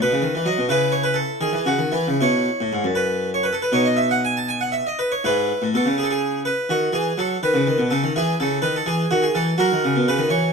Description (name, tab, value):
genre	classical, baroque-style suite movement for harpsichord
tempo	73-88 BPM (dotted quarters)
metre	12/8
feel	rubato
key	unclear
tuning	A4 = 441 Hz
part	harpsichord	solo	0.0-10.5 s	F#2 to A5	-18 LUFS	equal	none
room	light reverb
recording	close, detailed microphones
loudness	-18 LUFS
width	side -5 dB against mid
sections	0.0-10.5 A section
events	none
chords	0.0 B; 0.7 C#m; 2.2 Bsus4; 3.7 B; 5.2 E/G#; 6.7 B/D#; 8.1 C#madd9 (rootless); 9.6 F#7